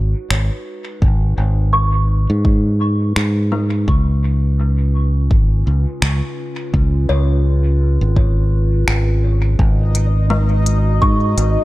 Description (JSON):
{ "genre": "ambient dub", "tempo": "84 BPM", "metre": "4/4", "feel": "swing 58% on 16ths", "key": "G# dorian", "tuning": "A4 = 438 Hz", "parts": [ { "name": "warbly tape-like pad", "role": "sustained chords", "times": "0.0-11.6 s", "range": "C#3 to B4", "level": "-28 LUFS", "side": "right 1 dB", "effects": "chorus, built-in reverb" }, { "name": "kalimba", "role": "arpeggios", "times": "0.0-11.6 s", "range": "G#3 to C#6", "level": "-23 LUFS", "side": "left 1 dB", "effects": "low-pass filter, dub echo" }, { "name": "fingered electric bass", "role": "bass", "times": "0.0-11.6 s", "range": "G#1 to G#2", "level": "-15 LUFS", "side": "equal", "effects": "none" }, { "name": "organic electronic drum kit", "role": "drums", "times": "0.3-11.5 s", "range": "finger snaps, hi-hat", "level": "-25 LUFS", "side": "equal", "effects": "dub echo" }, { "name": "electronic kick drum", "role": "drums", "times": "1.0-11.2 s", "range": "none", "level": "-16 LUFS", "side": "equal", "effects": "none" }, { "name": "bubbling stepped-filter texture", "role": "texture", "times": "9.8-11.6 s", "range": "D#4 to D#5", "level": "-24 LUFS", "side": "left 2 dB", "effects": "chorus, built-in reverb" } ], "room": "little or no reverb", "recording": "none", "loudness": "-14 LUFS", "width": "side -18 dB against mid", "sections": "0.0-11.6 A section", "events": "fade-in on ambient pad 0.0-11.6", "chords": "0.0 G#m7; 3.9 C#7; 9.6 G#m7" }